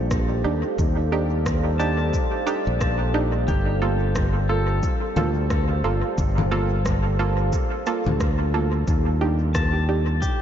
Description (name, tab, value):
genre	ambient dub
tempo	89 BPM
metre	4/4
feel	swing 60% on 16ths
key	G minor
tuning	A4 = 440 Hz
part	deep dark ambient pad	sustained chords	0.0-10.4 s	G4 to F5	-28 LUFS	equal	chorus, built-in reverb
part	pedal steel guitar	arpeggios	0.0-10.4 s	G4 to A5	-33 LUFS	left 3 dB	tape echo
part	modern bright fingered electric bass	bass	0.0-10.2 s	G1 to Eb2	-22 LUFS	equal	tube saturation
part	electronic kick drum	drums	0.1-10.4 s	none	-25 LUFS	equal	none
part	electronic rim click, cabasa and congas	drums	0.1-10.4 s	none	-32 LUFS	left 2 dB	dub echo
part	filtered dub chord stab	stabs	0.4-10.4 s	Bb3 to A4	-28 LUFS	right 4 dB	chorus, dub echo
room	light reverb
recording	nothing above 7.6 kHz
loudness	-20 LUFS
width	side -9 dB against mid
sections	0.0-10.4 A section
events	none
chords	0.0 Ebmaj7; 3.5 Gm9; 8.9 Ebmaj7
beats	0.11 | 0.79 1.46 2.13 2.81 | 3.48 4.16 4.83 5.50 | 6.18 6.85 7.53 8.20 | 8.88 9.55 10.22